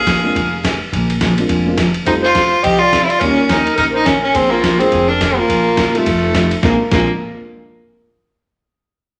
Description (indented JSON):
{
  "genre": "country, western swing",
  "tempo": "210 BPM",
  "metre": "4/4",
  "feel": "swing 59% on 8ths",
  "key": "Bb mixolydian",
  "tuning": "A4 = 440 Hz",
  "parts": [
    { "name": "clear fiddle", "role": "melody", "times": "0.0-7.1 s", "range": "A3 to Ab4", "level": "-18 LUFS", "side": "equal", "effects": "none" },
    { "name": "growling clarinet", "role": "second line", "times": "0.0-7.1 s", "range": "F4 to F5", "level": "-22 LUFS", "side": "equal", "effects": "none" },
    { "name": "upright bass", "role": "bass", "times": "0.0-7.1 s", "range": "F1 to Eb2", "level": "-26 LUFS", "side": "equal", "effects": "none" },
    { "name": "picked steel-string acoustic guitar", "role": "accompaniment", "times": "0.1-7.1 s", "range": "Bb2 to Bb4", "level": "-23 LUFS", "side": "equal", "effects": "none" },
    { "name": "boom bap sampler-style drum kit", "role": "drums", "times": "0.1-7.0 s", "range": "crash cymbal, hi-hat, kick drum, ride cymbal, snare drum", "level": "-22 LUFS", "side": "equal", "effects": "none" },
    { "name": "dark upright piano", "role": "accompaniment", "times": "0.2-7.1 s", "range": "G3 to F4", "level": "-23 LUFS", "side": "equal", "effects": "none" }
  ],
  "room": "moderate large studio reverb, RT60 1.1 s",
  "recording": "none",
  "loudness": "-14 LUFS",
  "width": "mono",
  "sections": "0.0-6.6 A section; 6.6-7.8 B section",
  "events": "none",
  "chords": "0.0 Bb9; 2.1 F9; 3.2 Eb9; 4.3 Bb9; 6.1 F7; 6.6 Bb9"
}